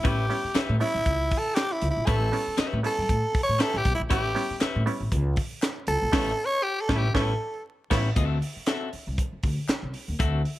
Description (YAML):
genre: funk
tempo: 118 BPM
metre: 4/4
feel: swing 56% on 16ths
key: A mixolydian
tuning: A4 = 438 Hz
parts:
  - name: growling tenor saxophone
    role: melody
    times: 0.0-7.6 s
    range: E4 to C#5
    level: -27 LUFS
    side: equal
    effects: none
  - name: electric guitar at the edge of break-up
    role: accompaniment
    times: 0.0-10.4 s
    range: C4 to E5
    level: -32 LUFS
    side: left 5 dB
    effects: none
  - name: muted clav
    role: stabs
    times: 0.0-8.1 s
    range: G3 to E4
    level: -32 LUFS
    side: right 3 dB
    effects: overdrive
  - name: upright bass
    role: bass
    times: 0.0-10.4 s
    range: A1 to A2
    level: -28 LUFS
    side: equal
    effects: none
  - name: tight funk drum kit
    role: drums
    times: 0.0-10.6 s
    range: crash cymbal, handclaps, hi-hat, kick drum, snare drum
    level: -28 LUFS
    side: equal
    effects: none
  - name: group handclap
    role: percussion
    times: 0.6-9.8 s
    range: none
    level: -42 LUFS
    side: left 4 dB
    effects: none
room: light reverb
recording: vinyl crackle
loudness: -23 LUFS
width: side -16 dB against mid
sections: 0.0-8.2 A section; 8.2-10.6 B section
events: tenor saxophone solo 0.0-8.2; band accent 6.1-8.2; silent gap 7.7-8.2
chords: 0.0 A9; 8.2 D9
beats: | 0.05 0.55 1.06 1.57 | 2.08 2.58 3.09 3.60 | 4.11 4.61 5.12 5.63 | 6.14 6.64 7.15 7.66 | 8.17 8.68 9.19 9.69 | 10.20